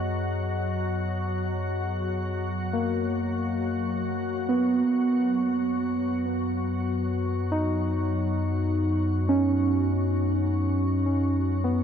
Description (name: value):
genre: ambient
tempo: 51 BPM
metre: 4/4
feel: straight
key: unclear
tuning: A4 = 440 Hz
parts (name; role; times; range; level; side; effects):
- muted felt-like synth keys; arpeggios; 0.0-11.8 s; A#3 to D#5; -26 LUFS; right 1 dB; chorus, ping-pong delay
- warm sub bass; bass; 0.0-11.8 s; F#2; -29 LUFS; left 1 dB; none
- organ-like drone; drone; 0.0-11.8 s; F#3 to F#4; -32 LUFS; left 2 dB; ensemble chorus, built-in reverb
room: moderate huge ambient reverb, RT60 7.8 s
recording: nothing above 7.8 kHz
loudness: -24 LUFS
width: side -8 dB against mid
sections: 0.0-11.8 A section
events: none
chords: 0.0 G#m9/F#; 4.9 B/F#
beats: | 0.19 1.36 2.54 3.72 | 4.89 6.07 7.25 8.42 | 9.60 10.78